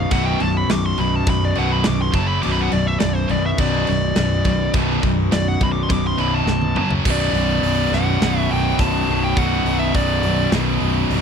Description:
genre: heavy metal.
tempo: 104 BPM.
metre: 4/4.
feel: straight.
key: B minor.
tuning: A4 = 442 Hz.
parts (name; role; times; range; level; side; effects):
high-gain lead guitar; melody; 0.0-10.5 s; C5 to D6; -24 LUFS; left 1 dB; distortion, tape echo.
cranked stack guitar; riff; 0.0-11.2 s; B1 to B2; -23 LUFS; left 1 dB; overdrive.
high-gain distorted guitar; riff; 0.0-11.2 s; B1 to F#3; -25 LUFS; right 11 dB; distortion.
scooped high-gain guitar; riff; 0.0-11.2 s; B1 to F#3; -25 LUFS; left 10 dB; distortion.
fingered electric bass; bass; 0.0-11.2 s; B0 to F#1; -22 LUFS; equal; none.
tight metal drum kit; drums; 0.1-11.2 s; crash cymbal, hi-hat, kick drum, snare drum, toms; -25 LUFS; equal; none.
room: little or no reverb.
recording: dry, close 1970s-style studio recording.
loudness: -16 LUFS.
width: side -7 dB against mid.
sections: 0.0-7.1 A section; 7.1-11.2 B section.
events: lead electric guitar solo 0.0-7.1; drum fill 6.5-7.1; half time 7.1-11.2.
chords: 0.0 B5; 2.1 F#5; 2.4 Bm; 6.8 F#5; 7.1 Bm.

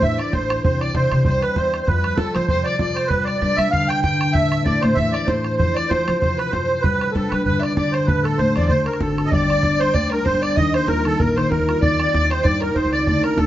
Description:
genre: celtic folk, Celtic reel.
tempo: 193 BPM.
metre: 4/4.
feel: swing 55% on 8ths.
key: A minor, G minor from 9.3 s.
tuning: A4 = 441 Hz.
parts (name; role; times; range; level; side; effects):
musette accordion; melody; 0.0-13.5 s; A4 to G5; -21 LUFS; right 2 dB; none.
dark fiddle; second line; 0.0-13.5 s; A4 to G5; -27 LUFS; left 4 dB; none.
concert harp; accompaniment; 0.0-13.5 s; C3 to E5; -23 LUFS; left 1 dB; none.
upright bass; bass; 0.0-13.5 s; G1 to G3; -24 LUFS; left 1 dB; none.
bodhran; percussion; 0.0-13.5 s; none; -24 LUFS; right 1 dB; none.
room: moderate stone room reverb, RT60 1.1 s.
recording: band playing live in one room, nothing above 7.7 kHz.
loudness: -17 LUFS.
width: side -13 dB against mid.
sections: 0.0-9.3 A section; 9.3-13.5 B section.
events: none.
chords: 0.0 Am; 0.6 Cadd9; 1.9 Fadd9; 3.1 G; 4.3 Am; 5.6 F; 6.8 G; 8.1 Am7; 8.7 D7; 9.3 G5; 10.6 Ebsus2; 11.8 Cm/Eb.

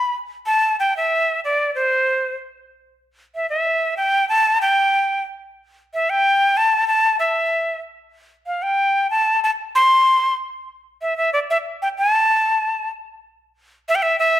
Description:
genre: andean folk.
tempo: 94 BPM.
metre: 2/4.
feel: straight.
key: A minor.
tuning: A4 = 440 Hz.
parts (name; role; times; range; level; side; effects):
breathy bright quena; solo; 0.0-14.4 s; C5 to C6; -16 LUFS; equal; none.
room: moderate recital hall reverb, RT60 1.3 s.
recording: none.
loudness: -16 LUFS.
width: side -12 dB against mid.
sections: 0.0-3.0 A section; 3.0-13.2 B section; 13.2-14.4 B section.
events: none.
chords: none.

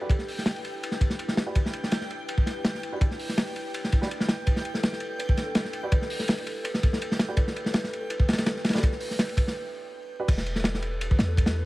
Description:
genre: drum and bass, jungle.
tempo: 165 BPM.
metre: 4/4.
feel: straight.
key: E minor.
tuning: A4 = 441 Hz.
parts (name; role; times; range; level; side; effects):
warbly tape-like pad; sustained chords; 0.0-11.7 s; D4 to B4; -40 LUFS; left 1 dB; chorus, built-in reverb.
dark baby grand piano; stabs; 0.0-10.3 s; D4 to B4; -38 LUFS; right 2 dB; vintage 12-bit sampler grit, dub echo.
backwards swelling texture; texture; 0.0-9.6 s; G5; -41 LUFS; right 1 dB; built-in reverb.
kalimba; melody; 0.1-0.4, 4.5-11.4 s; G4 to B4; -36 LUFS; equal; dub echo.
crunchy breakbeat drum kit; drums; 0.1-11.6 s; crash cymbal, hi-hat, kick drum, ride cymbal, snare drum; -25 LUFS; equal; none.
warm 808-style bass; bass; 10.3-11.7 s; E1 to E2; -28 LUFS; equal; none.
room: small room ambience.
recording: vinyl crackle.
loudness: -24 LUFS.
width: side -19 dB against mid.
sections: 0.0-10.3 A section; 10.3-11.7 B section.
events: build-up 0.0-10.3; filter sweep on ambient pad 0.0-10.3; break 9.6-10.3; drop 10.3-11.7.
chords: 0.0 Em7.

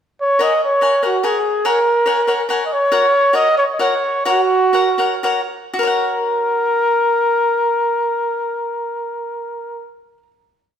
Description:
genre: mexican folk, mariachi.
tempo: 106-142 BPM.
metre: 3/4.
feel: straight.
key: F# major.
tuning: A4 = 444 Hz.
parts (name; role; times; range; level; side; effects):
mellow trumpet; melody; 0.2-9.9 s; F#4 to D#5; -16 LUFS; equal; none.
cavaquinho; accompaniment; 0.4-10.3 s; F#4 to G#5; -20 LUFS; left 2 dB; none.
room: wet stone room reverb, RT60 1.3 s.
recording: band playing live in one room.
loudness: -14 LUFS.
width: side -8 dB against mid.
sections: 0.0-0.4 pickup bar; 0.4-5.8 A section; 5.8-9.1 final chord.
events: slowing down 2.9-5.8.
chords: 0.4 F#add9; 2.9 F#.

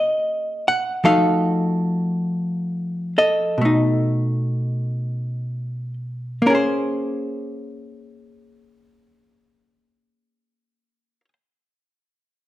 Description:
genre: jazz ballad.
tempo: 40-50 BPM.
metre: 4/4.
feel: swing 66% on 8ths.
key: Bb minor.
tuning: A4 = 440 Hz.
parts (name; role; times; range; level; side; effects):
hollow-body jazz guitar; solo; 0.0-11.3 s; B2 to Gb5; -19 LUFS; equal; none.
room: moderate large studio reverb, RT60 1.3 s.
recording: close, detailed microphones.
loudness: -19 LUFS.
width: side -15 dB against mid.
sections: 0.0-6.5 A section; 6.5-12.4 B section.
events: slowing down 0.0-6.5.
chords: 0.0 Bbm7; 1.0 F7b9; 3.6 B7; 6.5 Bbm9.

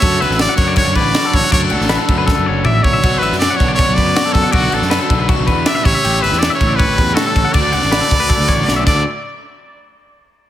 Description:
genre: math rock and midwest emo.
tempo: 159 BPM.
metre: 4/4.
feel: straight.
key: D major.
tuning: A4 = 440 Hz.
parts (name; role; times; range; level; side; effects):
brilliant trumpet; melody; 0.0-9.0 s; F#4 to E5; -18 LUFS; right 1 dB; none.
twangy electric guitar; arpeggios; 0.0-9.0 s; F#4 to F#5; -20 LUFS; left 5 dB; spring reverb, slapback echo.
biting overdriven guitar; riff; 0.0-9.0 s; A2 to G4; -21 LUFS; right 1 dB; slapback echo.
fuzz fingered electric bass; bass; 0.0-9.0 s; F#1 to F#2; -20 LUFS; equal; overdrive.
crisp fusion drum kit; drums; 0.0-9.0 s; crash cymbal, kick drum, snare drum, toms; -16 LUFS; equal; none.
room: moderate lush hall reverb, RT60 1.6 s, small room ambience.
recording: big arena sound.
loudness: -12 LUFS.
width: side -12 dB against mid.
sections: 0.0-9.1 A section; 9.1-10.5 B section.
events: drum fill 2.3-3.0, 8.7-9.1.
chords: 0.0 Dmaj7; 3.0 Bm11; 5.9 A9; 7.5 Dmaj7; 8.9 D; 9.1 N.C..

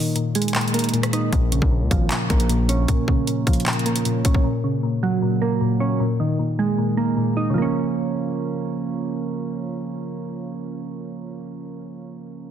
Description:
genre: hip hop, trap.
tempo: 154 BPM.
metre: 4/4.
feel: half-time.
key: Bb minor.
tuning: A4 = 440 Hz.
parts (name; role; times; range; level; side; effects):
soft electric-piano-like synth keys; accompaniment; 0.0-12.5 s; Bb2 to Eb4; -21 LUFS; right 1 dB; chorus.
trap drum kit; drums; 0.2-4.4 s; handclaps, hi-hat, kick drum, rim click; -22 LUFS; equal; none.
distorted 808-style bass; bass; 1.3-2.9 s; Ab1 to Db2; -21 LUFS; left 1 dB; distortion.
room: light reverb, digital ambience.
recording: dense, heavily limited modern master.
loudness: -19 LUFS.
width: side -9 dB against mid.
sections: 0.0-1.3 A section; 1.3-7.6 B section; 7.6-10.7 C section.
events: break 0.0-1.3.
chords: 0.0 Absus2/Bb; 1.3 Bbm; 4.4 Gb/Bb; 6.0 Absus2/Bb; 7.6 Bbm.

